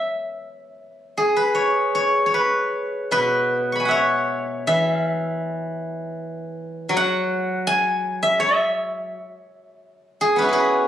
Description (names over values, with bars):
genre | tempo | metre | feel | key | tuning
chinese traditional, Chinese solo plucked strings | 79 BPM | 4/4 | uneven beats, rubato | E gong mode | A4 = 439 Hz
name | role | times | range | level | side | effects
steel-string zither | solo | 0.0-10.9 s | B2 to C#6 | -19 LUFS | equal | none
room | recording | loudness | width
wet booth ambience, RT60 0.2 s | recorded on a phone in the room, studio reverb, compression | -19 LUFS | side -10 dB against mid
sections
0.0-10.9 A section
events
none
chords
none